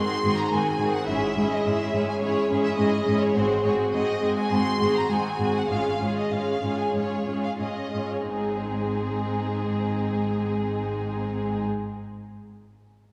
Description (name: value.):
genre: classical, dramatic, fast romantic movement for symphony orchestra.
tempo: 86-107 BPM.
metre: 4/4.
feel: rubato.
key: Ab major.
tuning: A4 = 439 Hz.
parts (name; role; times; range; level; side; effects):
warm symphonic violin section; melody; 0.0-11.6 s; Ab4 to C6; -33 LUFS; equal; none.
rich studio violin section; second line; 0.0-11.6 s; Eb4 to Ab4; -36 LUFS; equal; none.
rich studio viola section; accompaniment; 0.0-11.7 s; Eb3 to Db4; -30 LUFS; equal; none.
concert harp; arpeggios; 0.0-12.5 s; Ab2 to Db5; -31 LUFS; equal; none.
rich symphonic cello section; bass; 0.0-11.6 s; Ab2; -32 LUFS; equal; none.
warm symphonic double bass section; bass; 1.1-11.6 s; Ab1; -37 LUFS; equal; none.
room: wet concert hall reverb, RT60 2.3 s.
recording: heard from further back in the room.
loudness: -25 LUFS.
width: mono.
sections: 0.0-8.3 A section; 8.3-10.9 B section.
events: slowing down 2.2-8.3.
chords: 0.0 Ab7; 1.1 Dbm/Ab; 3.4 Ab7; 5.7 Db/Ab; 8.3 Ab.